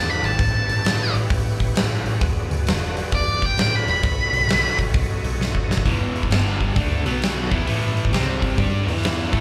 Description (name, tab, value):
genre	blues rock power trio and southern rock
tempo	132 BPM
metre	4/4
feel	swing 65% on 8ths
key	unclear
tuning	A4 = 440 Hz
part	octave-fuzz lead guitar	melody	0.0-4.8 s	D5 to B5	-24 LUFS	equal	distortion, slapback echo
part	overdriven tonewheel organ	sustained chords	0.0-5.8 s	D#4 to D#5	-34 LUFS	equal	slow rotary speaker, chorus vibrato
part	vintage muted picked electric bass	bass	0.0-9.4 s	E1 to A2	-26 LUFS	equal	none
part	huge arena drum kit	drums	0.2-9.4 s	hi-hat, kick drum, snare drum	-25 LUFS	equal	none
part	distorted electric guitar	riff	5.9-9.4 s	E2 to A4	-26 LUFS	equal	distortion, slapback echo
room	small room ambience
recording	live gig heard through the venue's PA, club ambience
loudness	-21 LUFS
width	mono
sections	0.0-5.9 A section; 5.9-9.4 B section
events	lead electric guitar solo 0.0-5.9; drum fill 5.4-5.9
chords	0.4 A7; 2.2 E7; 4.0 B7; 5.9 E5; 6.3 G5; 6.8 D5; 7.0 B5; 7.4 E5; 7.7 A5; 8.1 C5; 8.6 G5; 8.8 E5